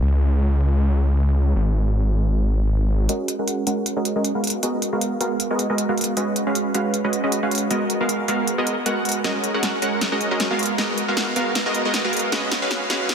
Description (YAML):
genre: future bass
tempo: 156 BPM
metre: 4/4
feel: swing 56% on 16ths, half-time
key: G# dorian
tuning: A4 = 440 Hz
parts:
  - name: wide detuned saw bass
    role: bass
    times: 0.0-3.1 s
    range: G#1 to C#2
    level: -17 LUFS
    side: equal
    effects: chorus, tube saturation
  - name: supersaw stab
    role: riff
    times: 3.1-13.1 s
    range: G#3 to F#5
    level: -21 LUFS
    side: right 1 dB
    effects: low-pass filter, ping-pong delay
  - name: big-room dance drum kit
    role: drums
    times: 3.1-13.1 s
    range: hi-hat, snare drum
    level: -25 LUFS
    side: equal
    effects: none
room: moderate lush hall reverb, RT60 2.0 s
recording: dense, heavily limited modern master, high-pass filter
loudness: -19 LUFS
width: side -7 dB against mid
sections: 0.0-3.1 A section; 3.1-13.1 B section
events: build-up 3.1-13.1; filter sweep on supersaw synth 3.1-13.1; filter sweep 3.1-13.1; drum fill 9.2-13.1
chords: 0.0 N.C.; 3.1 F#69; 4.4 G#m9; 6.2 C#9sus4; 7.7 G#m9; 9.2 F#69; 10.6 G#m9; 12.3 C#9sus4